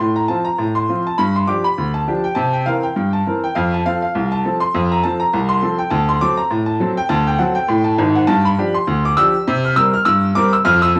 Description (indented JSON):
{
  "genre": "ragtime piano",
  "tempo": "101 BPM",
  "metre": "2/4",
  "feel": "swing 56% on 16ths",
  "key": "F major",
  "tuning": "A4 = 440 Hz",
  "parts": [
    { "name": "bright upright piano", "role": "solo", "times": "0.0-11.0 s", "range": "Ab1 to F6", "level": "-17 LUFS", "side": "equal", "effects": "none" }
  ],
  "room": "moderate spring reverb, RT60 1.3 s, small room ambience",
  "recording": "home recording on cassette, vinyl crackle",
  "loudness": "-17 LUFS",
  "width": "mono",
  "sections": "0.0-11.0 A section",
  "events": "none",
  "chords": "0.0 F/A; 1.2 G5; 2.4 C7; 3.6 F; 5.9 D7; 8.3 G5; 9.5 C5"
}